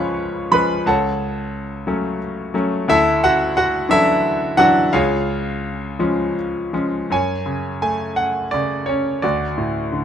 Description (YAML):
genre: classical, lyrical solo piano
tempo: 53-61 BPM (dotted quarters)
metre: 6/8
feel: rubato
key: F# harmonic minor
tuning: A4 = 440 Hz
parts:
  - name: bright grand piano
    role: solo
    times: 0.0-10.0 s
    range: C#2 to C#6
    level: -17 LUFS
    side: equal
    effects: none
room: light reverb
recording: close, detailed microphones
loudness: -17 LUFS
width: side -9 dB against mid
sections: 0.0-7.1 A section; 7.1-10.0 B section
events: none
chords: 0.0 C#; 0.9 F#m/C#; 2.9 Dadd9; 4.9 C#; 7.1 F#m; 9.2 D